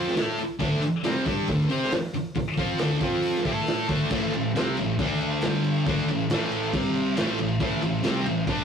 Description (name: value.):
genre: garage rock duo or trio.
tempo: 137 BPM.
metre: 4/4.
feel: straight.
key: A minor.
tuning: A4 = 442 Hz.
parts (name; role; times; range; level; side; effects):
thick fuzz guitar; riff; 0.0-8.6 s; G2 to C5; -24 LUFS; equal; distortion.
crunchy breakbeat drum kit; drums; 0.1-8.6 s; crash cymbal, hi-hat, kick drum, snare drum; -29 LUFS; equal; none.
room: wet studio reverb, RT60 0.7 s.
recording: rough rehearsal-room recording, warm saturation.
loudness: -23 LUFS.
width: side -7 dB against mid.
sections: 0.0-4.1 A section; 4.1-8.6 B section.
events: none.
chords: 0.2 D5; 3.0 F5; 3.5 A5; 3.9 D5; 4.1 Am; 5.0 D5; 5.4 G5; 5.9 A5; 6.7 C5; 7.2 Am.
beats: 0.17 | 0.61 1.04 1.48 1.92 | 2.36 2.79 3.23 3.67 | 4.11 4.54 4.98 5.42 | 5.86 6.29 6.73 7.17 | 7.61 8.04 8.48.